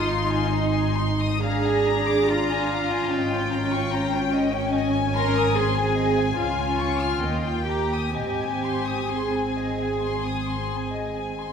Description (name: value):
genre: classical, slow romantic movement for string orchestra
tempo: 62-75 BPM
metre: 4/4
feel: rubato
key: Ab major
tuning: A4 = 440 Hz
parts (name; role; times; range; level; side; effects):
- warm chamber violin section; melody; 0.0-11.5 s; G5 to C6; -30 LUFS; left 8 dB; none
- warm chamber violin section; second line; 0.0-11.5 s; Eb5 to F6; -30 LUFS; left 5 dB; none
- warm chamber viola section; accompaniment; 0.0-11.5 s; Bb3 to Eb4; -27 LUFS; right 1 dB; none
- dark chamber double bass section; bass; 0.0-11.5 s; Ab1 to Eb2; -28 LUFS; right 1 dB; none
- warm studio cello section; bass; 0.0-11.4 s; Eb4 to Bb4; -26 LUFS; right 2 dB; none
room: wet concert hall reverb, RT60 1.9 s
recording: minimal, uncompressed stereo recording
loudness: -21 LUFS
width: side -7 dB against mid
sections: 0.0-11.5 A section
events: none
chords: 0.0 Ab; 1.4 Bb7/Ab; 3.1 Eb7/Ab; 4.7 Ab; 6.4 Db; 7.2 Eb; 8.1 Ab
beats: 0.51 | 1.43 2.29 3.11 3.92 | 4.75 5.57 6.39 7.22 | 8.15 9.09 10.01 10.93